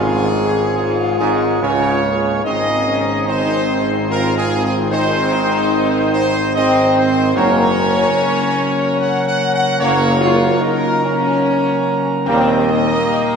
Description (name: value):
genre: classical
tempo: 73 BPM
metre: 3/4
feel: straight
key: unclear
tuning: A4 = 442 Hz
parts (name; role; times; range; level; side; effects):
- mellow trumpet section; melody; 0.0-13.4 s; Ab4 to Gb5; -20 LUFS; right 1 dB; none
- chamber organ, principal chorus; sustained chords; 0.0-13.4 s; Ab2 to Db5; -22 LUFS; right 1 dB; none
- clear French horn section; sustained chords; 0.0-13.4 s; Bb3 to Ab4; -19 LUFS; left 3 dB; none
- dark trombone section; sustained chords; 0.0-12.6 s; Ab2 to Eb4; -22 LUFS; right 1 dB; none
- warm tuba; bass; 0.0-13.0 s; Gb1 to Eb2; -20 LUFS; right 2 dB; none
room: wet church reverb, RT60 3.6 s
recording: none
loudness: -14 LUFS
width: side -6 dB against mid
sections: 0.0-13.4 A section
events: none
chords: 0.0 Db; 2.5 Ab; 7.4 Gb; 12.3 Eb